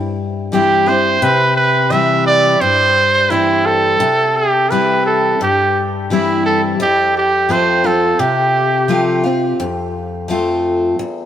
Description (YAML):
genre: country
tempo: 86 BPM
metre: 4/4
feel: straight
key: C major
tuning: A4 = 440 Hz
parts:
  - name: picked steel-string acoustic guitar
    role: accompaniment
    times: 0.0-11.3 s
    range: E2 to F4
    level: -17 LUFS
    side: left 2 dB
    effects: none
  - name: bright trumpet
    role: melody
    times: 0.5-9.2 s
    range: E4 to E5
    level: -13 LUFS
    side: right 2 dB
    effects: none
room: wet plate reverb, RT60 3.8 s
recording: heard from further back in the room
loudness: -12 LUFS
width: side -10 dB against mid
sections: 0.0-11.3 A section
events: none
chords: 0.0 C; 6.8 F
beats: 0.53 | 1.23 1.92 2.62 3.32 | 4.01 4.71 5.41 6.11 | 6.80 7.50 8.20 8.90 | 9.60 10.29 10.99